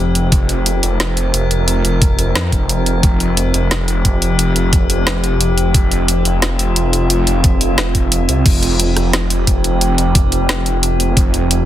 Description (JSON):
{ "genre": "dark technical drum and bass", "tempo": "177 BPM", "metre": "4/4", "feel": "straight", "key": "unclear", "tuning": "A4 = 438 Hz", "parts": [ { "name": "metallic inharmonic drone", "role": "sustained chords", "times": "0.0-11.7 s", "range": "F3 to Bb4", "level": "-19 LUFS", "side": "equal", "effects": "chorus, built-in reverb, sidechain pumping" }, { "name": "snarling distorted saw bass", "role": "bass", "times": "0.0-11.7 s", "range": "F1 to F2", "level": "-16 LUFS", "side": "equal", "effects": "distortion" }, { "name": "drum and bass drum kit", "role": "drums", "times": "0.2-11.6 s", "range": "crash cymbal, hi-hat, rim click, snare drum", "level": "-18 LUFS", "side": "equal", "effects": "overdrive" }, { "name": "electronic kick drum", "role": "drums", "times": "0.3-11.2 s", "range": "none", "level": "-14 LUFS", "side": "equal", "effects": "overdrive" } ], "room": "light reverb, digital ambience", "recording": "dense, heavily limited modern master", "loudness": "-12 LUFS", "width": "side -12 dB against mid", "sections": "0.0-11.7 A section", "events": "none", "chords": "0.0 Fsus2", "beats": "| 0.32 0.66 1.00 1.34 | 1.68 2.02 2.35 2.69 | 3.03 3.37 3.71 4.05 | 4.39 4.73 5.07 5.41 | 5.75 6.08 6.42 6.76 | 7.10 7.44 7.78 8.12 | 8.46 8.80 9.13 9.47 | 9.81 10.15 10.49 10.83 | 11.17 11.51" }